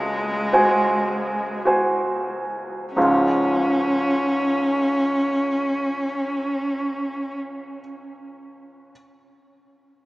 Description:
classical, romantic duo for cello and grand piano; 43-59 BPM; 3/4; rubato; Db major; A4 = 441 Hz
rich cello; melody; 0.0-7.4 s; Ab3 to Db4; -23 LUFS; equal
bright grand piano; accompaniment; 0.0-8.9 s; Db2 to Ab5; -21 LUFS; right 1 dB
wet cathedral reverb, RT60 5.5 s; in a vast, echoing space, small speaker sound; -19 LUFS; side -20 dB against mid
0.0-3.0 A section; 3.0-6.6 B section
slowing down 0.0-3.0
0.0 Ab7/Db; 3.0 Db
0.52 1.65 | 2.95 4.16 5.39

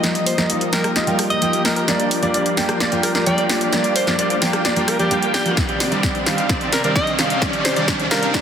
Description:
EDM, festival progressive house; 130 BPM; 4/4; straight; A4 = 440 Hz
fingerpicked steel-string acoustic guitar; accompaniment; 0.0-8.4 s; Eb3 to D5; -24 LUFS; right 1 dB; sidechain pumping, tape echo
lush unison pad; sustained chords; 0.0-8.4 s; C3 to F5; -27 LUFS; left 2 dB; chorus, sidechain pumping
warm concert grand piano; arpeggios; 0.0-8.4 s; D5 to G5; -25 LUFS; right 1 dB; sidechain pumping, low-pass filter, tape echo
supersaw chords; riff; 0.0-8.4 s; Bb3 to G5; -24 LUFS; equal; sidechain pumping, low-pass filter, tape echo
big-room dance drum kit; drums; 0.0-8.4 s; hi-hat, rim click, snare drum; -22 LUFS; equal
riser; sound effects; 3.6-8.4 s; -29 LUFS; right 1 dB
warm alto saxophone; melody; 0.3-8.3 s; G4 to Eb5; -24 LUFS; equal; tape echo
electronic kick drum; drums; 5.6-8.4 s; -24 LUFS; equal
wet lush hall reverb, RT60 2.2 s; dense, heavily limited modern master, high-pass filter; -16 LUFS; side -8 dB against mid
0.0-8.4 A section
build-up 0.0-8.4; drum fill 0.0-8.4; filter sweep on supersaw synth 0.0-8.4
0.0 Ebadd9; 1.9 Bb6; 5.6 Cmadd9
| 0.03 0.50 0.96 1.42 | 1.88 2.34 2.80 3.27 | 3.73 4.19 4.65 5.11 | 5.57 6.03 6.50 6.96 | 7.42 7.88 8.34

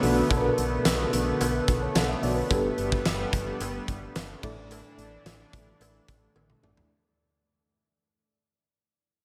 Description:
1980s-style pop; 109 BPM; 4/4; straight; A4 = 436 Hz
FM electric piano with tremolo; accompaniment; 0.0-6.9 s; G2 to A5; -31 LUFS; equal; phaser
chorused pulse-width pad; sustained chords; 0.0-6.9 s; D3 to D4; -35 LUFS; equal
solid FM bass; bass; 0.0-6.8 s; G1 to B1; -34 LUFS; equal
big rock drum kit; drums; 0.0-6.9 s; crash cymbal, hi-hat, kick drum, snare drum, tambourine, toms; -31 LUFS; equal
cowbell; percussion; 0.3-6.5 s; -42 LUFS; equal
wet cathedral reverb, RT60 6.1 s; dreamy mix soaked in reverb; -26 LUFS; mono
0.0-6.9 A section
fade-out 0.0-6.9; drum fill 6.4-6.9
0.0 Bm7; 2.5 Gadd9; 4.4 Asus4
| 0.30 0.85 1.40 1.95 | 2.50 3.06 3.60 4.16 | 4.71 5.26 5.81 6.36

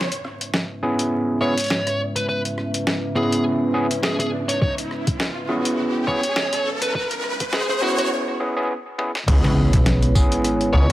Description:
glitch hop; 103 BPM; 4/4; swing 56% on 16ths; C# minor; A4 = 443 Hz
dark analog pad; sustained chords; 0.0-10.9 s; G#3 to E5; -28 LUFS; equal; wide subtle chorus, sidechain pumping
boom bap sampler-style drum kit; drums; 0.0-10.9 s; crash cymbal, hi-hat, rim click, snare drum, tambourine, toms; -25 LUFS; left 1 dB; high-pass filter on hats, high-pass filter on snare, high-pass filter on toms, high-pass filter on cymbals, high-pass filter on perc
riser and impact; sound effects; 0.0-10.9 s; -27 LUFS; equal
overdriven tine electric piano; stabs; 0.8-10.9 s; B3 to G#4; -22 LUFS; equal; sidechain pumping, tape echo
fuzz lead guitar; melody; 1.4-10.9 s; F#4 to C#5; -25 LUFS; equal; distortion, tape echo
electronic kick drum; drums; 4.6-10.9 s; -20 LUFS; equal
gritty driven synth bass; bass; 9.3-10.9 s; C#2; -16 LUFS; equal
slap-like FM bass; bass; 9.4-10.1 s; B1 to C#2; -18 LUFS; equal
moderate studio reverb, RT60 0.5 s; vinyl crackle, high-pass filter; -19 LUFS; side -15 dB against mid
0.0-9.3 A section; 9.3-10.9 B section
build-up 0.0-9.3; riser 0.0-8.1; filter sweep on analog synth pad 0.0-9.3; break 8.1-9.3; drum fill 9.0; drop 9.3-10.9; impact 9.3-10.9
0.0 C#m7
0.54 1.12 1.71 | 2.29 2.87 3.45 4.04 | 4.62 5.20 5.78 6.37 | 6.95 7.53 8.11 8.70 | 9.28 9.86 10.44

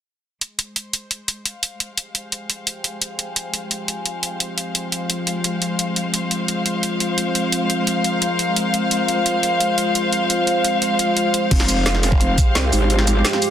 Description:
dark technical drum and bass; 173 BPM; 4/4; straight; F minor; A4 = 440 Hz
deep dark ambient pad; sustained chords; 2.7-13.5 s; Ab3 to Bb5; -24 LUFS; equal; chorus, built-in reverb, sidechain pumping
drum and bass drum kit; drums; 0.4-13.5 s; crash cymbal, hi-hat, shaker, snare drum; -21 LUFS; equal; overdrive
warm chamber string section; texture; 0.4-13.5 s; Ab3 to F5; -23 LUFS; left 2 dB; sidechain pumping
growl bass; bass; 11.5-13.2 s; F1 to C2; -18 LUFS; equal; chorus, overdrive, sidechain pumping
electronic kick drum; drums; 11.5-12.4 s; -16 LUFS; equal; overdrive
light reverb; dense, heavily limited modern master; -18 LUFS; side -10 dB against mid
0.4-11.5 A section; 11.5-13.5 B section
fade-in on string section 0.4-11.5; filter sweep on ambient pad 0.4-11.5; drop 11.5-13.5
0.4 Fmadd9
| 0.41 0.76 1.11 1.46 | 1.80 2.15 2.50 2.84 | 3.19 3.54 3.88 4.23 | 4.58 4.92 5.27 5.62 | 5.96 6.31 6.66 7.00 | 7.35 7.70 8.04 8.39 | 8.74 9.09 9.43 9.78 | 10.12 10.47 10.82 11.17 | 11.51 11.86 12.21 12.55 | 12.90 13.25

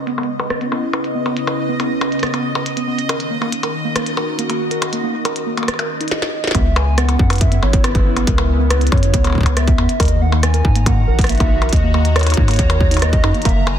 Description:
IDM; 139 BPM; 4/4; straight; C# dorian; A4 = 439 Hz
phased analog pad; sustained chords; 0.0-13.8 s; C#3 to A#5; -24 LUFS; left 1 dB; phaser, chorus
bubbling stepped-filter texture; texture; 0.0-6.1 s; D#5; -28 LUFS; equal; chorus, built-in reverb, sidechain pumping
mellow tine electric piano; arpeggios; 0.1-13.7 s; A#3 to B4; -24 LUFS; right 2 dB; overdrive, medium stereo tremolo, low-pass filter, dub echo
glitchy drum kit; drums; 0.1-13.8 s; hi-hat, percussion blips, rim click, snare drum; -22 LUFS; left 1 dB; low-pass filter on hats, low-pass filter on perc, soft clipping on snare, low-pass filter on snare, low-pass filter on room
warbly nostalgic lead; melody; 6.1-13.8 s; A#4 to G#5; -24 LUFS; right 1 dB; chorus, dub echo
round analog bass; bass; 6.5-13.8 s; F#1 to G#2; -16 LUFS; equal
electronic kick drum; drums; 6.5-13.5 s; -16 LUFS; equal; distortion
light reverb; dense, heavily limited modern master; -14 LUFS; side -10 dB against mid
0.0-6.5 A section; 6.5-13.8 B section
filter sweep on drum 0.0-6.5; filter sweep on analog synth pad 0.0-6.5; drum fill 6.1-6.5
0.0 C#m7; 3.1 D#m7; 6.5 C#m7; 10.0 D#m7
0.07 0.50 0.94 | 1.37 1.80 2.23 2.66 | 3.09 3.52 3.96 4.39 | 4.82 5.25 5.68 6.11 | 6.55 6.98 7.41 7.84 | 8.27 8.70 9.14 9.57 | 10.00 10.43 10.86 11.29 | 11.73 12.16 12.59 13.02 | 13.45

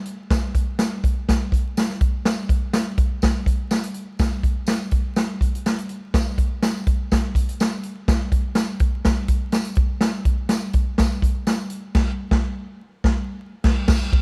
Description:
soul; 124 BPM; 4/4; straight
swinging big-band drum kit; drums; 0.1-14.2 s; crash cymbal, hi-hat, kick drum, ride cymbal, snare drum; -22 LUFS; equal
tambourine; percussion; 0.3-14.0 s; -40 LUFS; equal
little or no reverb; vinyl crackle; -22 LUFS; mono
0.0-13.9 A section
band accent 12.0-13.9
| 0.31 0.79 1.28 1.77 | 2.25 2.74 3.22 3.71 | 4.20 4.68 5.17 5.65 | 6.14 6.62 7.11 7.59 | 8.08 8.56 9.05 9.53 | 10.02 10.50 10.99 11.47 | 11.96 12.44 12.93 13.41 | 13.89

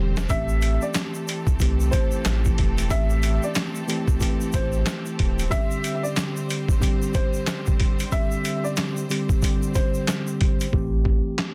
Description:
hip hop, boom-bap hip-hop; 92 BPM; 4/4; swing 61% on 16ths; A minor; A4 = 440 Hz
dark upright piano; melody; 0.0-10.7 s; C5 to E5; -33 LUFS; equal; high-pass filter, low-pass filter, digital delay
mellow tine electric piano; accompaniment; 0.0-11.5 s; D3 to G4; -30 LUFS; equal; high-pass filter, low-pass filter
clear studio string section; sustained chords; 0.0-10.7 s; D3 to C5; -39 LUFS; equal; high-pass filter, low-pass filter
saturated sub bass; bass; 0.0-5.5, 10.7-11.2 s; D1 to C2; -25 LUFS; equal
boom bap sampler-style drum kit; drums; 0.2-11.5 s; handclaps, hi-hat, kick drum, snare drum; -26 LUFS; equal
egg shaker; percussion; 0.2-10.7 s; -42 LUFS; equal
little or no reverb; dense, heavily limited modern master; -23 LUFS; mono
0.0-10.7 A section
break 0.0; drum fill 0.0; hi-hats muted 10.7-11.5
0.0 Am7; 5.5 Gsus4; 10.7 Am7
| 0.30 0.95 1.60 2.25 | 2.90 3.56 4.21 4.86 | 5.51 6.17 6.82 7.47 | 8.12 8.77 9.43 10.08 | 10.73 11.38

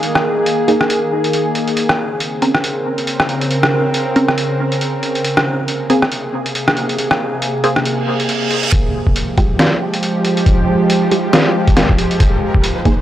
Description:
deep dubstep; 138 BPM; 4/4; swing 58% on 16ths, half-time; F minor; A4 = 440 Hz
bowed-like drone; sustained chords; 0.0-13.0 s; C3 to Bb4; -17 LUFS; equal; built-in reverb
trip hop sampler-style drum kit; drums; 0.0-13.0 s; hi-hat, rim click, snare drum; -18 LUFS; equal; high-pass filter on hats, high-pass filter on snare
filtered dub chord stab; stabs; 0.7-13.0 s; Ab3 to Bb4; -19 LUFS; right 1 dB; phaser, dub echo
reverse cymbal and riser; sound effects; 8.0-13.0 s; -25 LUFS; right 3 dB
electronic kick drum; drums; 8.7-13.0 s; -14 LUFS; equal
light reverb, digital ambience; dry, gritty hardware recording, vinyl crackle; -13 LUFS; side -12 dB against mid
0.0-8.7 A section; 8.7-13.0 B section
filter sweep on synth stab 0.0-8.7; reverse cymbal 8.0-8.7; build-up 8.7-13.0
0.0 Ebsus4; 1.8 Bbmadd9; 5.2 Abadd9; 8.7 Fmadd9; 12.2 Ebsus4
| 0.03 0.46 0.90 1.33 | 1.77 2.20 2.64 3.07 | 3.51 3.94 4.38 4.81 | 5.25 5.68 6.12 6.55 | 6.99 7.42 7.86 8.29 | 8.72 9.16 9.59 10.03 | 10.46 10.90 11.33 11.77 | 12.20 12.64

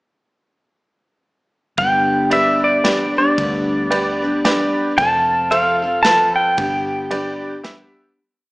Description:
honky-tonk and classic country; 113 BPM; 3/4; swing 60% on 8ths; G mixolydian; A4 = 440 Hz
pedal steel guitar; melody; 1.8-7.6 s; D5 to A5; -16 LUFS; equal
picked steel-string acoustic guitar; accompaniment; 1.8-8.2 s; G2 to B4; -22 LUFS; left 1 dB
vintage muted fingered electric bass; bass; 1.8-7.9 s; F1 to D2; -33 LUFS; equal
natural country drum kit; drums; 1.8-7.8 s; kick drum, ride cymbal, snare drum; -25 LUFS; equal
bright upright piano; accompaniment; 2.3-8.1 s; F4 to E5; -22 LUFS; right 1 dB
moderate large studio reverb, RT60 1.4 s; small speaker sound; -14 LUFS; side -24 dB against mid
1.8-8.2 A section
fade-out 6.6-8.2
1.8 G; 5.0 F; 6.6 G
| 1.78 2.31 2.85 | 3.38 3.92 4.45 | 4.98 5.51 6.05 | 6.58 7.11 7.64

